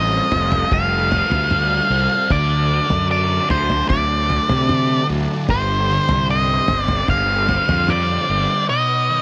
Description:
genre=psychedelic rock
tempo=75 BPM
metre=4/4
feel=straight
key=unclear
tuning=A4 = 441 Hz
part: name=octave-fuzz lead guitar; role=melody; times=0.0-9.2 s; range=C5 to F5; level=-21 LUFS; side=equal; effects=distortion, tape echo
part: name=combo organ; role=sustained chords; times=0.0-9.2 s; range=D3 to C#5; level=-33 LUFS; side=equal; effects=none
part: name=fuzz guitar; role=riff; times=0.0-9.2 s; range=G2 to F4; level=-27 LUFS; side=equal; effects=distortion, phaser
part: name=fuzz fingered electric bass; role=bass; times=0.0-8.5 s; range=F1 to C3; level=-23 LUFS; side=equal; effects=overdrive
part: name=cloth-damped thuddy drum kit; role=drums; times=0.3-8.1 s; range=kick drum, toms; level=-24 LUFS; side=equal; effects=none
room=studio reverb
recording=none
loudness=-18 LUFS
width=mono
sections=0.0-9.2 A section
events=none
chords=0.0 Fadd9; 2.3 D; 5.5 Gsus4; 8.7 Badd9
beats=0.72 1.51 | 2.31 3.10 3.90 4.70 | 5.50 6.29 7.09 7.89 | 8.69

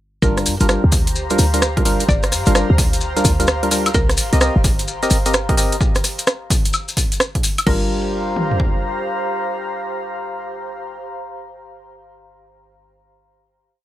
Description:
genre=UK garage, two-step garage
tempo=129 BPM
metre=4/4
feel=swing 64% on 16ths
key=G minor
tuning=A4 = 440 Hz
part: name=mallet-like synth pluck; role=melody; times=0.2-4.1, 7.7-11.0 s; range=Bb4 to D5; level=-26 LUFS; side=equal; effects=chorus, cassette tape, digital delay
part: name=percussive organ stab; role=stabs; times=0.2-11.0 s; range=G3 to Eb5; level=-22 LUFS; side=equal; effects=chorus, digital delay
part: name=short 808-style bass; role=bass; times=0.2-9.0 s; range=G1 to G2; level=-19 LUFS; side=equal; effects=tube saturation, sidechain pumping
part: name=punchy analog drum machine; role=drums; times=0.2-8.7 s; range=kick drum, toms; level=-19 LUFS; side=equal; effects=none
part: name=maracas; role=percussion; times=0.2-7.6 s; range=none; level=-24 LUFS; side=left 4 dB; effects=none
part: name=airy breathy pad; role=texture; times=0.2-11.2 s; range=G4 to Bb5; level=-26 LUFS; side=equal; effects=chorus, sidechain pumping
part: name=garage drum kit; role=drums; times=0.4-7.8 s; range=crash cymbal, hi-hat, rim click, woodblock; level=-21 LUFS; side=right 1 dB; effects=overdrive
room=light reverb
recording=faint mains hum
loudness=-15 LUFS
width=side -14 dB against mid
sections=0.2-7.7 drop; 7.7-11.4 final chord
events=drop 0.2-7.7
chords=0.2 Gm7; 3.9 Cm7; 7.7 Gm7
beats=| 0.23 0.69 1.16 1.62 | 2.08 2.55 3.02 3.48 | 3.95 4.41 4.88 5.34 | 5.81 6.27 6.74 7.20 | 7.67 8.13 8.60 9.06 | 9.53 9.99 10.46 10.92

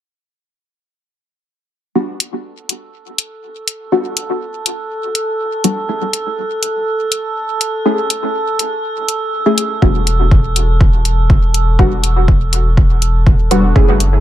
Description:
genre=dub techno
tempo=122 BPM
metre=4/4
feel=swing 53% on 16ths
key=unclear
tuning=A4 = 440 Hz
part: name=filtered dub chord stab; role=stabs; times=2.0-13.9 s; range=G3 to G#4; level=-17 LUFS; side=left 1 dB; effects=chorus, phaser, sidechain pumping, dub echo
part: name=metallic inharmonic drone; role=texture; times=3.4-14.2 s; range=A4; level=-21 LUFS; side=right 3 dB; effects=chorus, built-in reverb, sidechain pumping
part: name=electronic hi-hat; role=drums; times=2.2-14.1 s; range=none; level=-17 LUFS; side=left 2 dB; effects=none
part: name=pure sine sub bass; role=bass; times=9.8-14.2 s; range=E1 to F#1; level=-14 LUFS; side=equal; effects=sidechain pumping
part: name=electronic kick drum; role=drums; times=9.8-13.9 s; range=none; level=-11 LUFS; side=equal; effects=none
room=moderate spring reverb, RT60 1.6 s, digital ambience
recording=none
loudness=-13 LUFS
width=side -13 dB against mid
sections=2.0-14.2 A section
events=filter sweep on synth stab 2.0-14.2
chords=2.0 N.C.; 5.9 Amaj7; 9.8 N.C.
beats=| 1.95 2.45 2.94 3.43 | 3.92 4.41 4.91 5.40 | 5.89 6.38 6.87 7.36 | 7.86 8.35 8.84 9.33 | 9.82 10.31 10.81 11.30 | 11.79 12.28 12.77 13.27 | 13.76

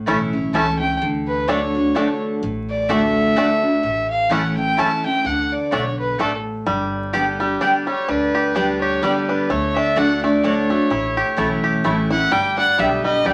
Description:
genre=bluegrass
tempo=127 BPM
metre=3/4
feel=swing 56% on 8ths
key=D major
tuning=A4 = 436 Hz
part: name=picked steel-string acoustic guitar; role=accompaniment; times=0.0-13.3 s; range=G2 to G4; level=-24 LUFS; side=equal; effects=none
part: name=bluegrass banjo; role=arpeggios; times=0.1-13.3 s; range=G3 to G4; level=-25 LUFS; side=equal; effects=none
part: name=mandolin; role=stabs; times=0.1-13.3 s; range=A3 to A5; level=-26 LUFS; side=equal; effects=none
part: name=upright bass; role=bass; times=0.1-13.3 s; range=G1 to D2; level=-33 LUFS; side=equal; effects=none
part: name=dark fiddle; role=melody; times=0.5-13.3 s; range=A4 to A5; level=-23 LUFS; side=equal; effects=none
room=wet small room reverb, RT60 0.5 s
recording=vinyl crackle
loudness=-19 LUFS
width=mono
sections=0.0-6.7 A section; 6.7-13.3 B section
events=none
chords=0.0 A; 1.0 D; 3.8 A; 5.3 D; 6.7 G; 9.5 D; 10.9 A; 12.3 G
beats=0.07 0.54 | 1.01 1.48 1.95 | 2.42 2.90 3.37 | 3.84 4.31 4.78 | 5.25 5.72 6.20 | 6.67 7.14 7.61 | 8.08 8.55 9.03 | 9.50 9.97 10.44 | 10.91 11.38 11.85 | 12.31 12.78 13.25

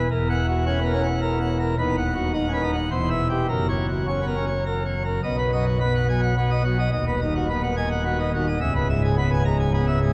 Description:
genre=classical, organ toccata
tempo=107 BPM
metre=3/4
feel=straight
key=B major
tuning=A4 = 436 Hz
part: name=pipe organ, plenum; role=solo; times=0.0-10.1 s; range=C#1 to A#5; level=-23 LUFS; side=equal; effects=none
room=wet cathedral reverb, RT60 4.6 s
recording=worn, warbling old tape, cassette tape, vinyl crackle, warbly pitch drift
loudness=-23 LUFS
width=mono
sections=0.0-5.2 A section; 5.2-10.1 B section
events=none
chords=0.1 F#7/E; 1.8 B/D#; 2.9 C/E; 3.5 F#; 5.2 B; 6.9 B/D#; 8.6 C#m7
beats=| 0.11 0.67 1.22 | 1.78 2.35 2.92 | 3.50 4.08 4.66 | 5.23 5.80 6.36 | 6.92 7.48 8.04 | 8.60 9.16 9.73

